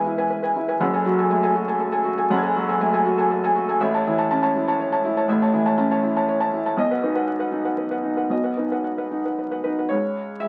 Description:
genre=neoclassical minimalist piano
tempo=120 BPM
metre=3/4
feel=rubato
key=unclear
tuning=A4 = 438 Hz
part: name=felt-muted upright piano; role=solo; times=0.0-10.5 s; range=F#1 to G#6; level=-22 LUFS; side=equal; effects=none
room=moderate studio ambience, RT60 0.5 s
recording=very old 78 rpm record, vinyl crackle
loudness=-22 LUFS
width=mono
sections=0.0-9.9 A section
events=none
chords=0.0 C#m7; 0.8 F#madd9; 3.8 A; 6.8 B; 9.9 C#m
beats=0.30 | 0.81 1.31 1.81 | 2.31 2.82 3.31 | 3.81 4.30 4.79 | 5.28 5.77 6.27 | 6.76 7.26 7.77 | 8.30 8.85 9.39 | 9.92 10.43

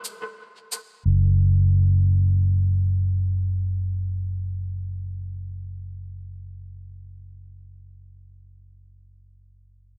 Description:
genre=ambient dub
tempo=free time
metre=none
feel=none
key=unclear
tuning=A4 = 441 Hz
part: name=cabasa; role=drums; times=0.0-0.9 s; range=none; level=-36 LUFS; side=equal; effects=low-pass filter on perc, small room ambience, low-pass filter on snare, dub echo
part: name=fingered electric bass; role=bass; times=1.1-10.0 s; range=F#1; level=-24 LUFS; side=equal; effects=none
room=little or no reverb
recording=low-pass filter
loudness=-23 LUFS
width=mono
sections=0.0-1.1 A section; 1.1-10.0 B section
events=break 0.0-1.1; filter sweep 1.1-10.0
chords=none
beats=free time

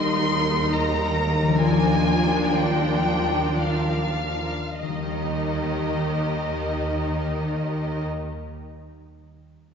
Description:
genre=classical, slow romantic movement for symphony orchestra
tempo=47-70 BPM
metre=3/4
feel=rubato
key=Eb major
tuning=A4 = 437 Hz
part: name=warm studio violin section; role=melody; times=0.0-8.0 s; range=Eb5 to C6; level=-28 LUFS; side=left 3 dB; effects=none
part: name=rich studio violin section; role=second line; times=0.0-8.0 s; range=Eb4 to Bb4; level=-31 LUFS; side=right 2 dB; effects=none
part: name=clear studio viola section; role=accompaniment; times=0.0-8.0 s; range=Eb3 to Eb4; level=-28 LUFS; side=right 1 dB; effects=none
part: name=concert harp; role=arpeggios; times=0.0-8.7 s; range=Eb3 to Eb5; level=-28 LUFS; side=left 4 dB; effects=none
part: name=warm studio cello section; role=bass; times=0.0-8.0 s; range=Eb2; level=-27 LUFS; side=right 1 dB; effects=none
part: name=dark studio double bass section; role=bass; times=4.8-8.0 s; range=Eb2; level=-31 LUFS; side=right 2 dB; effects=none
room=wet concert hall reverb, RT60 2.5 s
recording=recorded in a church or concert hall, nothing above 7.6 kHz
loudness=-21 LUFS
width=side -6 dB against mid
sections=0.0-4.8 A section; 4.8-8.3 B section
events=slowing down 0.0-4.8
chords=0.0 Eb; 1.6 Bb7/Eb; 4.8 Eb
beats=0.74 | 1.60 2.54 3.61 | 4.82 5.99 7.14

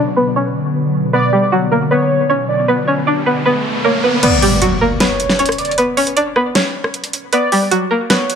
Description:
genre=hip hop, trap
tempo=155 BPM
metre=4/4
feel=half-time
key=B harmonic minor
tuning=A4 = 440 Hz
part: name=string-like resonator pluck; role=melody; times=0.0-8.4 s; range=F#3 to D5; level=-15 LUFS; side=equal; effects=chorus, low-pass filter, ping-pong delay
part: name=ethereal airy pad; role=sustained chords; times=0.0-4.2 s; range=B2 to B3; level=-20 LUFS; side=left 1 dB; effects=ensemble chorus, built-in reverb, low-pass filter
part: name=downlifter, riser and impact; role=sound effects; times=2.5-5.8 s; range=none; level=-21 LUFS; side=right 1 dB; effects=none
part: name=warm velvety synth lead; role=second line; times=1.1-8.4 s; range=B4 to D5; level=-20 LUFS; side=equal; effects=chorus, ping-pong delay
part: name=dubstep drum kit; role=drums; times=4.2-8.4 s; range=crash cymbal, hi-hat, rim click, snare drum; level=-17 LUFS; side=equal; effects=none
room=light reverb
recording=none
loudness=-13 LUFS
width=side -7 dB against mid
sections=0.0-4.2 A section; 4.2-8.4 B section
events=filter sweep 0.0-4.2; riser 2.5-4.2; kick muted 4.2-8.4; impact 4.2-5.8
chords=0.0 Bmadd9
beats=0.36 0.74 | 1.13 1.52 1.91 2.29 | 2.68 3.07 3.46 3.84 | 4.23 4.62 5.00 5.39 | 5.78 6.17 6.55 6.94 | 7.33 7.71 8.10

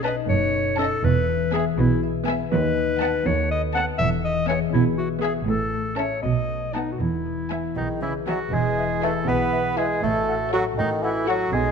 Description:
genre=cinematic, playful, whimsical film cue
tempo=80 BPM (dotted quarters)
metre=6/8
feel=straight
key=E major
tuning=A4 = 440 Hz
part: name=warm studio violin section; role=melody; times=0.0-11.5 s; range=F#5 to A5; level=-34 LUFS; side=left 4 dB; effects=none
part: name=clear clarinet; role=second line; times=0.0-11.4 s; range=D#4 to F#5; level=-26 LUFS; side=left 2 dB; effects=none
part: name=rich studio viola section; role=accompaniment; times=0.0-11.5 s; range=B3 to F#4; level=-34 LUFS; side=right 2 dB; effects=none
part: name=concert harp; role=arpeggios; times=0.0-11.7 s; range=A2 to E5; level=-28 LUFS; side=left 12 dB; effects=none
part: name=dark symphonic double bass section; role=bass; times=0.0-11.7 s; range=E1 to D#2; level=-28 LUFS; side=right 5 dB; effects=none
part: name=warm studio cello section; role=bass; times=0.0-11.7 s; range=D#2 to D#3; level=-28 LUFS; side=right 3 dB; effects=none
part: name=rich studio violin section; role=second line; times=0.1-11.5 s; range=C#5 to F#5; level=-34 LUFS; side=left 4 dB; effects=none
part: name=clear oboe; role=second line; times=7.8-11.7 s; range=D#4 to B4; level=-29 LUFS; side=right 2 dB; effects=none
part: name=clear bassoon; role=accompaniment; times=7.8-11.7 s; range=D#3 to B3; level=-24 LUFS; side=right 2 dB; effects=none
part: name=mellow French horn section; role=sustained chords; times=8.5-11.7 s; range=D#4 to B4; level=-30 LUFS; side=left 6 dB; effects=none
part: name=silver concert flute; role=second line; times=8.8-11.3 s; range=E5 to F#5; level=-35 LUFS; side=left 4 dB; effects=none
room=moderate scoring stage reverb, RT60 1.8 s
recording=none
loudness=-20 LUFS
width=side -6 dB against mid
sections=0.0-8.5 A section; 8.5-11.7 A section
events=none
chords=0.0 B9; 1.0 E; 2.5 B7/D#; 4.0 E; 5.5 A; 6.2 B7; 7.0 E; 10.0 F#m/A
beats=0.29 | 1.04 1.78 | 2.53 3.27 | 4.00 4.74 | 5.49 6.24 | 7.00 7.76 | 8.53 9.28 | 10.03 10.78 | 11.53

